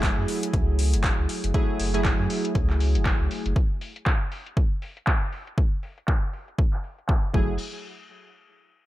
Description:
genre	deep house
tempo	119 BPM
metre	4/4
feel	swing 59% on 16ths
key	F# minor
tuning	A4 = 439 Hz
part	warm analog keys	stabs	0.0-3.5, 7.3-7.5 s	F#3 to G#4	-28 LUFS	right 1 dB	chorus, sidechain pumping, tape echo
part	warm sub bass	bass	0.0-3.5, 7.3-7.6 s	F#1 to F#2	-24 LUFS	equal	sidechain pumping
part	deep house drum kit	drums	0.0-7.5 s	crash cymbal, handclaps, hi-hat	-31 LUFS	equal	overdrive, low-pass filter on hats, low-pass filter on snare, low-pass filter on perc, low-pass filter on cymbals
part	electronic kick drum	drums	0.0-7.5 s	none	-23 LUFS	equal	none
room	little or no reverb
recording	none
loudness	-22 LUFS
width	side -16 dB against mid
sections	0.0-7.6 A section; 7.6-8.9 B section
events	filter sweep on drum 0.0-7.6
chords	0.0 F#m9; 7.6 N.C.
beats	0.03 0.54 1.04 | 1.54 2.05 2.55 3.06 | 3.56 4.06 4.57 5.07 | 5.58 6.08 6.58 7.09

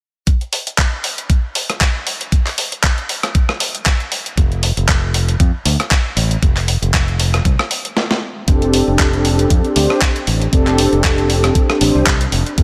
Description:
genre	nu-disco, nu disco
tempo	117 BPM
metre	4/4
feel	swing 55% on 16ths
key	F major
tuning	A4 = 440 Hz
part	dusty soul sampler-style drum kit	drums	0.3-12.6 s	handclaps, hi-hat, rim click, snare drum	-21 LUFS	equal	overdrive
part	electronic kick drum	drums	0.3-12.6 s	none	-17 LUFS	equal	none
part	modern bright fingered electric bass	bass	4.4-12.6 s	F1 to F2	-19 LUFS	equal	sidechain pumping
part	mellow synth brass	accompaniment	8.5-12.6 s	C4 to C5	-18 LUFS	equal	chorus, cassette tape, sidechain pumping, analog delay
room	moderate church reverb, RT60 3.4 s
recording	dreamy mix soaked in reverb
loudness	-16 LUFS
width	mono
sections	0.3-8.5 A section; 8.5-12.6 B section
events	drum fill 8.0-8.5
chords	0.3 N.C.; 8.5 F69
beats	| 0.27 0.78 1.30 1.81 | 2.32 2.83 3.35 3.86 | 4.37 4.89 5.40 5.91 | 6.42 6.94 7.45 7.96 | 8.48 8.99 9.50 10.02 | 10.53 11.04 11.55 12.07 | 12.58

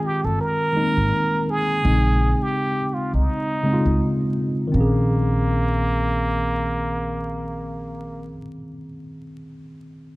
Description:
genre	lo-fi hip hop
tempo	83 BPM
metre	4/4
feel	swing 56% on 16ths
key	Bb dorian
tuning	A4 = 439 Hz
part	trumpet with plunger mute	melody	0.0-8.4 s	Bb3 to Bb4	-25 LUFS	right 1 dB	low-pass filter
part	mellow tine electric piano	accompaniment	0.0-10.1 s	Db3 to Eb5	-24 LUFS	equal	medium stereo tremolo, low-pass filter
part	upright bass	bass	0.2-8.4 s	G1 to Db2	-22 LUFS	equal	none
room	light reverb, small room ambience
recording	vinyl crackle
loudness	-19 LUFS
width	side -21 dB against mid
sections	0.0-4.7 A section; 4.7-7.6 B section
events	none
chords	0.0 Ab6; 1.8 Bbm11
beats	0.40 1.12 | 1.84 2.56 3.29 4.01 | 4.73 5.46 6.18 6.90

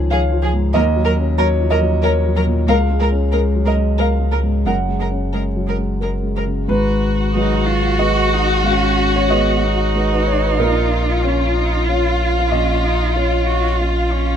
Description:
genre	neoclassical piano and strings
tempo	93 BPM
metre	3/4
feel	rubato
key	G# dorian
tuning	A4 = 440 Hz
part	dark grand piano	accompaniment	0.0-14.4 s	A#1 to G#5	-19 LUFS	equal	none
part	warm sub bass	bass	0.0-14.4 s	F#1 to D#2	-19 LUFS	equal	none
part	warm chamber violin section	melody	0.1-14.4 s	E#4 to A#4	-21 LUFS	left 2 dB	none
part	rich cello	second line	0.1-14.4 s	E#3 to F#4	-24 LUFS	right 6 dB	none
room	little or no reverb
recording	minimal, uncompressed stereo recording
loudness	-15 LUFS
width	side -8 dB against mid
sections	0.0-6.7 A section; 6.7-14.4 B section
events	none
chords	0.0 C#; 0.7 D#m7; 2.7 A#m7/C#; 4.7 F#add9; 6.7 G#m7; 10.6 A#m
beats	0.11 | 0.75 1.39 2.04 | 2.69 3.33 4.00 | 4.66 5.34 6.01 | 6.68 7.34 7.99 | 8.65 9.30 9.94 | 10.58 11.23 11.88 | 12.51 13.15 13.80

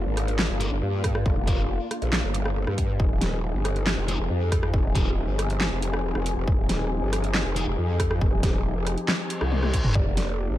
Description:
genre	heavy wobble dubstep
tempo	138 BPM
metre	4/4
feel	half-time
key	unclear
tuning	A4 = 440 Hz
part	dark studio string section	sustained chords	0.0-10.6 s	F3 to Ab4	-32 LUFS	left 2 dB	sidechain pumping, low-pass filter
part	growl bass	bass	0.0-10.6 s	Eb1 to G2	-26 LUFS	equal	chorus, overdrive
part	dubstep drum kit	drums	0.2-10.3 s	handclaps, hi-hat, rim click, snare drum, toms	-28 LUFS	equal	none
part	sludgy distorted guitar	stabs	0.6-7.6 s	D4 to Bb4	-35 LUFS	left 2 dB	overdrive, digital delay
part	electronic kick drum	drums	1.0-10.0 s	none	-24 LUFS	equal	none
part	reverse cymbal	sound effects	9.3-10.0 s	none	-34 LUFS	left 2 dB	none
part	felt-muted upright piano	melody	10.0-10.5 s	D5	-36 LUFS	right 3 dB	digital delay
room	little or no reverb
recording	dark, warm production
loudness	-22 LUFS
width	side -14 dB against mid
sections	0.0-10.6 A section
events	reverse cymbal 9.3-10.0; drum fill 9.5-10.0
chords	0.0 Gm; 3.0 Fm7; 10.0 Gm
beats	0.39 0.82 | 1.26 1.69 2.13 2.56 | 3.00 3.43 3.87 4.30 | 4.74 5.17 5.61 6.04 | 6.47 6.91 7.34 7.78 | 8.21 8.65 9.08 9.52 | 9.95 10.39

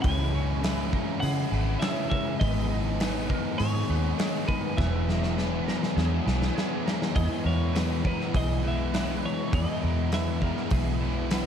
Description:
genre	rock, shoegaze and dream pop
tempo	101 BPM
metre	4/4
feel	straight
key	E lydian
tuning	A4 = 445 Hz
part	twelve-string electric guitar	melody	0.0-11.3 s	B4 to G#5	-36 LUFS	right 2 dB	analog delay
part	direct-recorded clean electric guitar	arpeggios	0.0-11.5 s	G#4 to D#5	-40 LUFS	right 11 dB	ensemble chorus, analog delay
part	biting overdriven guitar	riff	0.0-11.5 s	E2 to G#4	-33 LUFS	right 12 dB	reverse reverb
part	crunchy overdriven guitar	riff	0.0-11.5 s	G#2 to E4	-31 LUFS	left 13 dB	analog chorus
part	vintage muted fingered electric bass	bass	0.0-11.5 s	E1 to C#3	-28 LUFS	equal	none
part	big rock drum kit	drums	0.0-11.4 s	hi-hat, kick drum, snare drum	-30 LUFS	equal	none
room	studio reverb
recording	dark, warm production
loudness	-24 LUFS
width	side -8 dB against mid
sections	0.0-7.2 A section; 7.2-11.5 B section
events	drum fill 4.8-7.2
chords	0.0 C#m7; 2.4 G#madd9; 4.8 Emaj7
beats	| 0.04 0.63 1.22 1.81 | 2.41 3.00 3.59 4.19 | 4.78 5.37 5.96 6.56 | 7.15 7.74 8.34 8.93 | 9.53 10.12 10.71 11.31

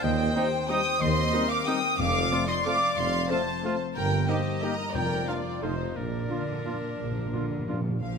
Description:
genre	classical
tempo	181 BPM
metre	3/4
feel	uneven beats, rubato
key	Bb major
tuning	A4 = 440 Hz
part	warm symphonic violin section	melody	0.0-7.8 s	Bb4 to Eb6	-34 LUFS	left 3 dB	none
part	clear oboe	second line	0.0-7.8 s	Bb4 to Eb6	-36 LUFS	right 3 dB	none
part	mellow clarinet	second line	0.0-7.8 s	A4 to Eb5	-35 LUFS	left 3 dB	none
part	mellow hollow large flute ensemble	second line	0.0-7.8 s	Bb4 to Eb6	-34 LUFS	right 2 dB	none
part	warm symphonic violin section	second line	0.0-8.2 s	D4 to G5	-34 LUFS	left 3 dB	none
part	concert harp	arpeggios	0.0-8.2 s	F2 to D5	-35 LUFS	left 13 dB	none
part	dark studio cello section	bass	0.0-8.2 s	Eb2 to F3	-36 LUFS	right 4 dB	none
part	dark symphonic double bass section	bass	0.0-8.2 s	F1 to Eb2	-34 LUFS	right 4 dB	none
part	mellow tuba	bass	0.0-7.3 s	F1 to Eb2	-35 LUFS	right 5 dB	none
part	dark symphonic viola section	accompaniment	0.4-7.8 s	C4 to Bb4	-38 LUFS	right 2 dB	none
part	mellow French horn section	sustained chords	0.4-7.8 s	G3 to Eb4	-37 LUFS	left 6 dB	none
part	warm trumpet	stabs	0.4-7.8 s	Eb4 to G4	-38 LUFS	right 3 dB	none
part	timpani	percussion	2.0-2.5, 4.9-8.2 s	F2 to Bb2	-34 LUFS	equal	none
room	moderate concert hall reverb, RT60 2.1 s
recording	close, detailed microphones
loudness	-24 LUFS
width	side -6 dB against mid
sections	0.0-8.0 A section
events	timpani fill 6.0-8.0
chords	0.0 Cm/Eb; 2.0 F; 4.0 Eb/G; 5.0 Bb/F; 5.6 F7; 6.0 Bb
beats	| 0.04 0.36 0.70 | 1.01 1.33 1.67 | 1.99 2.32 2.66 | 2.98 3.30 3.64 | 3.97 4.29 4.63 | 4.96 5.28 5.63 | 5.96 6.30 6.66 | 6.99 7.33 7.68 | 8.01

